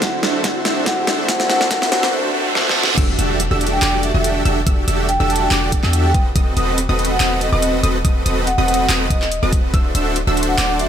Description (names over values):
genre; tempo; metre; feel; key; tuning
future bass; 142 BPM; 4/4; swing 53% on 16ths, half-time; E minor; A4 = 440 Hz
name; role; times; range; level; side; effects
vibraphone with soft mallets; melody; 0.0-10.9 s; D#5 to A5; -24 LUFS; left 1 dB; sidechain pumping, tape echo
warm baby grand piano; accompaniment; 0.0-3.0 s; D3 to F#4; -25 LUFS; equal; sidechain pumping, ping-pong delay
ethereal airy pad; sustained chords; 0.0-2.1 s; A3 to C5; -34 LUFS; right 2 dB; none
dense compressed supersaw; riff; 0.0-10.9 s; C4 to E5; -20 LUFS; right 1 dB; sidechain pumping
dubstep drum kit; drums; 0.0-10.9 s; crash cymbal, handclaps, hi-hat, snare drum; -21 LUFS; equal; overdrive
electronic kick drum; drums; 0.0-9.8 s; none; -18 LUFS; equal; none
riser, reverse cymbal and impact; sound effects; 0.1-4.7 s; none; -26 LUFS; right 2 dB; none
wide unison pluck; arpeggios; 3.0-10.9 s; D6 to E6; -27 LUFS; right 1 dB; sidechain pumping
warm 808-style bass; bass; 3.0-10.9 s; D1 to E2; -20 LUFS; equal; sidechain pumping
room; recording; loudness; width
light reverb, digital ambience; high-pass filter; -14 LUFS; side -9 dB against mid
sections
0.0-3.0 A section; 3.0-10.9 B section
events
build-up 0.0-3.0; drum fill 0.0-2.1, 2.6-3.0; filter sweep 0.0-3.0; reverse cymbal 2.1-3.0; drop 3.0-10.9; impact 3.0-4.7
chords
0.0 D9; 3.0 Em11; 6.1 B7b9/D#; 9.7 D9